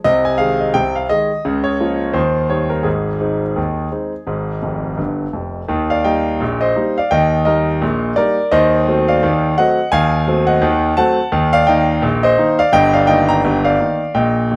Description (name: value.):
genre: ragtime piano.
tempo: 85 BPM.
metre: 2/4.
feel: swing 60% on 16ths.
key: Ab major, Eb major from 5.7 s.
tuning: A4 = 440 Hz.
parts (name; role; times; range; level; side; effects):
clear concert grand piano; solo; 0.0-14.6 s; F1 to Bb5; -16 LUFS; equal; none.
room: moderate studio reverb, RT60 0.5 s.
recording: none.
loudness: -16 LUFS.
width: mono.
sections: 0.0-5.7 A section; 5.7-14.6 B section.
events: grand piano fill 4.6-5.7.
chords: 0.0 Ab/C; 1.5 Bbm/Db; 2.2 Eb; 2.9 Ab; 5.7 Eb; 8.5 Ebdim7; 11.3 Eb5; 12.7 Eb/G.